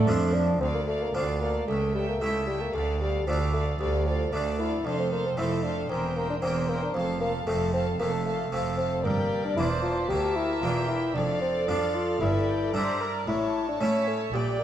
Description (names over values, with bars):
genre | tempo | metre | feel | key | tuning
classical, baroque-style concerto movement with solo episodes | 114 BPM | 4/4 | straight | D minor | A4 = 440 Hz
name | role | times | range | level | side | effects
dark bassoon | melody | 0.0-14.6 s | F3 to G4 | -29 LUFS | left 2 dB | none
rich chamber violin section | melody | 0.0-14.6 s | D5 to Bb5 | -40 LUFS | left 2 dB | none
rich chamber violin section | second line | 0.0-14.6 s | D4 to F5 | -36 LUFS | right 1 dB | none
dark chamber viola section | accompaniment | 0.0-14.6 s | D4 to D5 | -34 LUFS | right 2 dB | none
harpsichord | accompaniment | 0.0-14.6 s | C#2 to F4 | -33 LUFS | right 1 dB | none
warm chamber cello section | bass | 0.0-14.6 s | C#2 to A3 | -33 LUFS | right 2 dB | none
warm studio double bass section | bass | 0.0-14.6 s | E1 to A2 | -32 LUFS | right 2 dB | none
room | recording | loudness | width
wet recital hall reverb, RT60 1.5 s | none | -24 LUFS | side -10 dB against mid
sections
0.6-14.6 A section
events
none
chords
0.0 Dm; 1.7 A7/C#; 2.7 Dm; 4.8 F; 5.9 C7/E; 7.0 F; 9.1 Gm; 11.2 Dm/F; 12.2 Em7b5/G; 13.3 A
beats
0.07 | 0.61 1.14 1.68 2.21 | 2.74 3.27 3.79 4.32 | 4.85 5.37 5.90 6.42 | 6.95 7.47 8.00 8.52 | 9.05 9.58 10.10 10.62 | 11.15 11.68 12.21 12.74 | 13.27 13.80 14.33